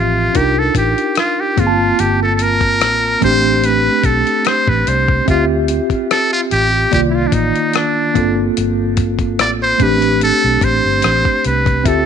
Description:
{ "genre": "R&B, neo-soul", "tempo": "73 BPM", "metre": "4/4", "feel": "swing 53% on 16ths", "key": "unclear", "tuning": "A4 = 439 Hz", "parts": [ { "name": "trumpet with metal mute", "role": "melody", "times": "0.0-12.1 s", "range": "D4 to D5", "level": "-16 LUFS", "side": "right 1 dB", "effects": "none" }, { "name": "mellow tine electric piano", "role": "accompaniment", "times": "0.0-12.1 s", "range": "Eb3 to A5", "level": "-17 LUFS", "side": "equal", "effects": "medium stereo tremolo" }, { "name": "vintage muted fingered electric bass", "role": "bass", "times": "0.0-12.1 s", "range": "G1 to D2", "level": "-19 LUFS", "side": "right 1 dB", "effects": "none" }, { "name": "dusty soul sampler-style drum kit", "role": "drums", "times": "0.3-12.1 s", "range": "hi-hat, kick drum, rim click", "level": "-19 LUFS", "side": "left 4 dB", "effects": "none" } ], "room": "digital ambience", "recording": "1960s-style stereo, nothing above 10.8 kHz", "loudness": "-12 LUFS", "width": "side -7 dB against mid", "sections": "0.0-12.1 A section", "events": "muted trumpet solo 0.0-12.1", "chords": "0.3 Cm11; 1.6 Gm11; 3.2 Am11; 5.3 Dm11; 6.9 Cm11; 8.2 Gm11; 9.8 Am11", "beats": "0.35 1.17 | 1.99 2.81 3.63 4.46 | 5.28 6.10 6.92 7.74 | 8.56 9.39 10.21 11.03 | 11.85" }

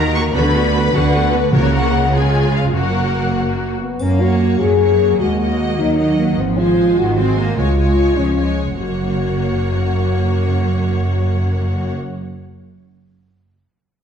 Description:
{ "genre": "cinematic, heroic adventure film score", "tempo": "100 BPM (dotted quarters)", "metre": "6/8", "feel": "straight", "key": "F# major", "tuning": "A4 = 440 Hz", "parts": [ { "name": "warm symphonic violin section", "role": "melody", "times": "0.0-11.9 s", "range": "B4 to C#6", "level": "-26 LUFS", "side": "left 4 dB", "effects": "none" }, { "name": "clear symphonic violin section", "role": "second line", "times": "0.0-11.9 s", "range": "G#4 to D#5", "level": "-26 LUFS", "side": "left 4 dB", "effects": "none" }, { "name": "rich symphonic viola section", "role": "accompaniment", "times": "0.0-11.9 s", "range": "G#3 to F#4", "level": "-25 LUFS", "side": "right 1 dB", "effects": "none" }, { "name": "mellow French horn section", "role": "sustained chords", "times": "0.0-11.9 s", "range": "G#3 to G#4", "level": "-20 LUFS", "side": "left 4 dB", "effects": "none" }, { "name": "clear symphonic cello section", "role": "bass", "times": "0.0-11.9 s", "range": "F#2 to B#3", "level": "-20 LUFS", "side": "right 2 dB", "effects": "none" }, { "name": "warm symphonic double bass section", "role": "bass", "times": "0.0-11.9 s", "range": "F#1 to F#2", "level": "-19 LUFS", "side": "right 2 dB", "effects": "none" }, { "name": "timpani", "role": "percussion", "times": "1.5-2.1 s", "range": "C#3", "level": "-20 LUFS", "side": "equal", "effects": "none" }, { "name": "triangle", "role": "percussion", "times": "4.0-4.8 s", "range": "none", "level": "-45 LUFS", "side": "left 1 dB", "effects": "none" } ], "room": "moderate scoring stage reverb, RT60 1.6 s", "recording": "dark, warm production", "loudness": "-14 LUFS", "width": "side -7 dB against mid", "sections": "0.0-4.0 A section; 4.0-8.8 B section; 8.8-11.2 C section", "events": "none", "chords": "0.3 Bm/D; 1.5 F#/C#; 2.1 C#; 2.7 F#; 5.2 D#m; 6.4 G#7; 7.6 C#; 8.8 F#", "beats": "| 0.35 0.94 | 1.53 2.14 | 2.75 3.37 | 3.99 4.59 | 5.19 5.78 | 6.37 6.96 | 7.56 8.17 | 8.78 9.38 | 9.98 10.58" }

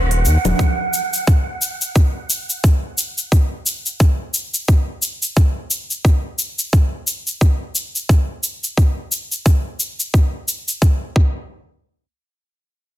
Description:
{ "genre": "organic downtempo", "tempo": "88 BPM", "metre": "4/4", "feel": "swing 58% on 16ths", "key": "unclear", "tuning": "A4 = 440 Hz", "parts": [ { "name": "round analog bass", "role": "bass", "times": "0.0-0.5 s", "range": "D#1 to D#2", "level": "-15 LUFS", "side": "equal", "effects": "sidechain pumping" }, { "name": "wind-like tuned noise texture", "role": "texture", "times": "0.0-0.6 s", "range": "F#5", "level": "-25 LUFS", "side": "right 5 dB", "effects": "built-in reverb" }, { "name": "electronic hi-hat, cabasa and congas", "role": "drums", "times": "0.1-11.0 s", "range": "none", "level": "-21 LUFS", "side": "left 1 dB", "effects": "none" }, { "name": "electronic kick drum", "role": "drums", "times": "0.6-11.3 s", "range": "none", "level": "-14 LUFS", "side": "equal", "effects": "none" } ], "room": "little or no reverb", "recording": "dense, heavily limited modern master", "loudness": "-16 LUFS", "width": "side -14 dB against mid", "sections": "0.0-11.5 A section; 11.5-13.0 B section", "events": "none", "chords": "none", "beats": "| 0.59 1.27 1.95 2.63 | 3.32 4.00 4.68 5.36 | 6.04 6.72 7.41 8.09 | 8.77 9.45 10.13 10.82" }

